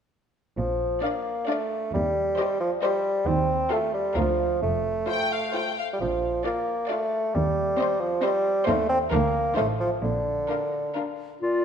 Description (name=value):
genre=cinematic, playful, whimsical film cue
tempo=133 BPM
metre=3/4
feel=straight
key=Bb major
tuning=A4 = 440 Hz
part: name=warm bassoon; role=accompaniment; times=0.6-11.6 s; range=Bb2 to C4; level=-25 LUFS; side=equal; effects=none
part: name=rich studio double bass section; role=bass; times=0.6-10.4 s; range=F1 to Eb2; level=-32 LUFS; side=right 3 dB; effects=none
part: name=warm studio cello section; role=bass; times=0.6-10.4 s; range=D2 to Bb2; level=-31 LUFS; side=right 2 dB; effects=none
part: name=rich studio violin section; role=melody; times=1.0-11.3 s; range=Eb5 to G5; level=-34 LUFS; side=left 5 dB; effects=none
part: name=rich studio violin section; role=second line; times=1.0-11.3 s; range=A4 to D5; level=-33 LUFS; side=left 4 dB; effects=none
part: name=rich studio viola section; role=accompaniment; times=1.0-11.3 s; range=C4 to G4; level=-35 LUFS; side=equal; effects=none
part: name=silver concert flute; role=second line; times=11.4-11.6 s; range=D5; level=-30 LUFS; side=left 2 dB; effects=none
part: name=warm clarinet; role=second line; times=11.4-11.6 s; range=F4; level=-22 LUFS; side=left 2 dB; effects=none
room=moderate scoring stage reverb, RT60 1.8 s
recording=minimal, uncompressed stereo recording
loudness=-23 LUFS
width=side -7 dB against mid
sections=0.6-11.4 A section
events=none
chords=0.6 Bb; 1.9 Cm/Eb; 3.3 F7/Eb; 4.2 Bb/D; 4.6 F; 6.0 Bb; 7.3 Cm/Eb; 8.7 F7/Eb; 9.1 Bb/D; 9.6 F7/A; 10.0 Bb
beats=| 0.58 1.03 1.49 | 1.94 2.39 2.83 | 3.27 3.72 4.17 | 4.63 5.09 5.55 | 6.00 6.45 6.90 | 7.34 7.79 8.23 | 8.67 9.12 9.57 | 10.04 10.50 10.96 | 11.43